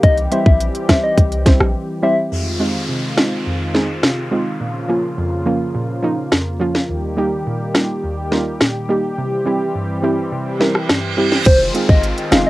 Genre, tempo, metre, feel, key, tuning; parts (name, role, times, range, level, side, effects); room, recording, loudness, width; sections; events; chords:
dancehall; 105 BPM; 4/4; straight; F minor; A4 = 440 Hz
soft struck synth lead; melody; 0.0-2.2, 11.5-12.5 s; C5 to F5; -18 LUFS; left 2 dB; chorus, cassette tape, analog delay
warm analog pad; sustained chords; 0.0-12.5 s; Db3 to G4; -24 LUFS; left 1 dB; chorus, cassette tape
warm 808-style bass; bass; 0.0-1.7, 11.5-12.4 s; F1 to C2; -20 LUFS; equal
island pop drum kit; drums; 0.0-12.5 s; crash cymbal, hi-hat, kick drum, rim click, snare drum; -14 LUFS; equal; cassette tape
soft round pluck; accompaniment; 0.3-12.4 s; Eb2 to C5; -20 LUFS; right 2 dB; chorus, cassette tape
downlifter and reverse cymbal; sound effects; 2.3-6.9, 10.6-12.5 s; -26 LUFS; right 2 dB
moderate booth ambience, RT60 0.2 s; home recording on cassette; -15 LUFS; side -18 dB against mid
0.0-2.3 A section; 2.3-11.5 B section; 11.5-12.5 A section
break 1.7-2.3; reverse cymbal 10.6-11.5
0.0 C; 2.3 Fm7; 4.6 Bbm; 6.9 Eb; 9.2 C; 11.5 Fm7